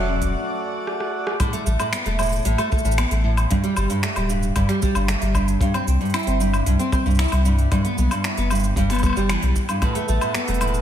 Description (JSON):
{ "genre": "folktronica", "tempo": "114 BPM", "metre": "4/4", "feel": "straight", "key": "A dorian", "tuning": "A4 = 440 Hz", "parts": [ { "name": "pedal harmonium", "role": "sustained chords", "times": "0.0-1.4, 9.8-10.8 s", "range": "A3 to D5", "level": "-28 LUFS", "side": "right 1 dB", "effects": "none" }, { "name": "nylon-string guitar", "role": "arpeggios", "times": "0.0-10.8 s", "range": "F#2 to E4", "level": "-22 LUFS", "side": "right 1 dB", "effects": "lush chorus, ping-pong delay" }, { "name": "warm sub bass", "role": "bass", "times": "0.0-10.8 s", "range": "D1 to C2", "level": "-21 LUFS", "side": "equal", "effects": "none" }, { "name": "kick drum", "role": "drums", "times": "0.2-9.9 s", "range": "none", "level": "-24 LUFS", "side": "equal", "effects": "none" }, { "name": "organic electronic drum kit", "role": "drums", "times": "0.2-10.8 s", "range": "cabasa, finger snaps, hi-hat, rim click, woodblock", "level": "-27 LUFS", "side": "equal", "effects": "overdrive" } ], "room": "moderate lush hall reverb, RT60 2.0 s", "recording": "dreamy mix soaked in reverb", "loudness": "-18 LUFS", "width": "side -10 dB against mid", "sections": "0.0-1.4 A section; 1.4-10.8 B section", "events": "break 0.3-1.4; drum fill 0.9-1.4", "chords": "0.0 E9sus4; 1.4 A5; 3.5 G5; 5.6 C5; 7.7 Em (rootless); 9.8 Asus2", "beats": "0.35 0.87 | 1.40 1.93 2.45 2.98 | 3.50 4.03 4.56 5.08 | 5.61 6.14 6.66 7.19 | 7.72 8.24 8.77 9.29 | 9.82 10.35" }